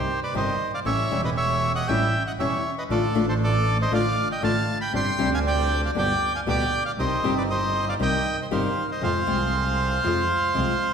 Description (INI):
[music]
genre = tango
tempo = 118 BPM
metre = 4/4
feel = rubato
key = C harmonic minor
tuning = A4 = 440 Hz
[part]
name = bandoneon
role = melody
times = 0.0-10.9 s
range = G4 to C6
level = -24 LUFS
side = right 1 dB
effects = none
[part]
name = bandoneon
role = stabs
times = 0.0-10.8 s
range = G3 to Ab4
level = -33 LUFS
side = right 4 dB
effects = none
[part]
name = warm double bass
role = bass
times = 0.0-10.8 s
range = E1 to F2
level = -27 LUFS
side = right 1 dB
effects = none
[part]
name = nylon-string guitar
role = accompaniment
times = 0.3-10.7 s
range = B2 to G4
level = -27 LUFS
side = left 4 dB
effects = none
[sound]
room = wet recital hall reverb, RT60 1.8 s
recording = recorded in a church or concert hall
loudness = -21 LUFS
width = side -7 dB against mid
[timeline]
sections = 0.0-10.9 A section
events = none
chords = 0.0 Cm; 0.9 A7; 2.9 Dm/A; 4.9 Gsus4; 6.0 G; 7.0 Cm; 9.0 Fm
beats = 0.34 | 0.85 1.36 1.87 2.38 | 2.89 3.40 3.91 4.42 | 4.93 5.44 5.95 6.46 | 6.97 7.49 8.00 8.51 | 9.02 9.53 10.04 10.54